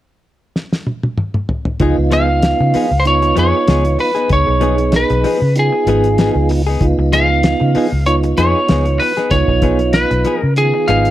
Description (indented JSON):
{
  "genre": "straight-eighth soul blues",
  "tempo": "96 BPM",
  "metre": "4/4",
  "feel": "swing 54% on 16ths",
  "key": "Db mixolydian",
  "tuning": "A4 = 440 Hz",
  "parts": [
    { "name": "cloth-damped thuddy drum kit", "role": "drums", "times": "0.6-11.1 s", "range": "hi-hat, kick drum, snare drum, toms", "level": "-19 LUFS", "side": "equal", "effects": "none" },
    { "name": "mellow tonewheel organ", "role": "accompaniment", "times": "1.8-11.1 s", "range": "Eb3 to Ab4", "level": "-19 LUFS", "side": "right 5 dB", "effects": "slow rotary speaker, chorus vibrato" },
    { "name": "direct-recorded clean electric guitar", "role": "stabs", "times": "1.8-11.1 s", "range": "F3 to Ab4", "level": "-22 LUFS", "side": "left 5 dB", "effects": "none" },
    { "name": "vintage muted fingered electric bass", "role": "bass", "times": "1.8-11.1 s", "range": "Ab1 to Db3", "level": "-16 LUFS", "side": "equal", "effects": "none" },
    { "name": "lightly driven lead guitar", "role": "melody", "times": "2.1-11.1 s", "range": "Ab4 to F5", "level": "-16 LUFS", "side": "equal", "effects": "none" }
  ],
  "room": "light reverb",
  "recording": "none",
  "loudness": "-12 LUFS",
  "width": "side -14 dB against mid",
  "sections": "0.0-1.8 A section; 1.8-11.1 B section",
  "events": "drum fill 0.6-1.8",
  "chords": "0.0 N.C.; 1.8 Db9"
}